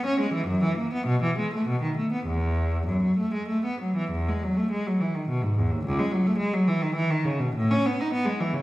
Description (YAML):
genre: classical, baroque-style suite movement for unaccompanied cello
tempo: 92-109 BPM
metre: 3/4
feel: rubato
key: E major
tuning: A4 = 440 Hz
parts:
  - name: rich cello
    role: solo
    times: 0.0-8.6 s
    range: C#2 to D#4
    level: -23 LUFS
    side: equal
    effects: none
room: wet recital hall reverb, RT60 1.3 s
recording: heard from further back in the room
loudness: -23 LUFS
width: side -17 dB against mid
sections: 0.0-4.1 A section; 4.1-8.6 B section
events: none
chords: none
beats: | 0.49 1.07 1.66 | 2.27 2.88 3.50 | 4.13 4.73 5.28 | 5.84 6.41 6.96 | 7.55 8.13